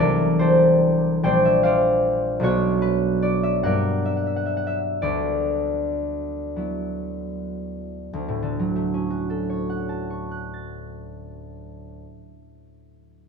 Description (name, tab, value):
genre	classical, solo harp piece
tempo	36-52 BPM (dotted quarters)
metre	6/8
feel	rubato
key	D major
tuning	A4 = 440 Hz
part	concert harp	solo	0.0-12.5 s	Bb1 to A6	-20 LUFS	equal	none
room	light reverb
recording	minimal, uncompressed stereo recording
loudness	-20 LUFS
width	side -6 dB against mid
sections	0.0-8.1 A section; 8.1-11.1 B section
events	slowing down 1.2-8.1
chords	0.0 C13; 1.2 Bb69; 2.4 Bmadd9; 3.6 Gm; 5.0 D69; 8.1 Dmaj7